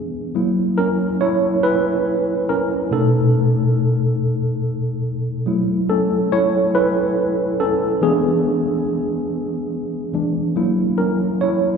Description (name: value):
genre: R&B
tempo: 47 BPM (dotted quarters)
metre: 6/8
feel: straight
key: F# dorian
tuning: A4 = 440 Hz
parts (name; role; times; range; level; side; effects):
- tine electric piano; solo; 0.0-11.8 s; B2 to C#5; -17 LUFS; equal; overdrive, fast stereo tremolo
room: wet church reverb, RT60 3.8 s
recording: recorded in a church or concert hall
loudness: -17 LUFS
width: side -6 dB against mid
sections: 0.0-11.8 A section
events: tine electric piano solo 0.0-11.8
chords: 0.3 F#7; 2.9 B7; 5.5 F#m7; 8.0 E7; 10.6 F#7